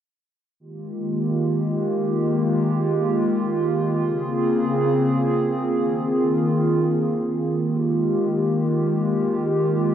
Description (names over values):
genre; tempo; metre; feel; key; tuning
hip hop; free time; none; none; F minor; A4 = 440 Hz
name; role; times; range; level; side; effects
hollow soft pad; sustained chords; 0.7-9.9 s; Db3 to Ab4; -19 LUFS; equal; chorus
room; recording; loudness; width
moderate huge ambient reverb, RT60 7.7 s; dark, warm production; -19 LUFS; side -9 dB against mid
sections
0.6-9.9 A section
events
none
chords
0.6 Fm11; 4.1 Bbm9; 5.8 Ab69; 7.5 Fm11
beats
free time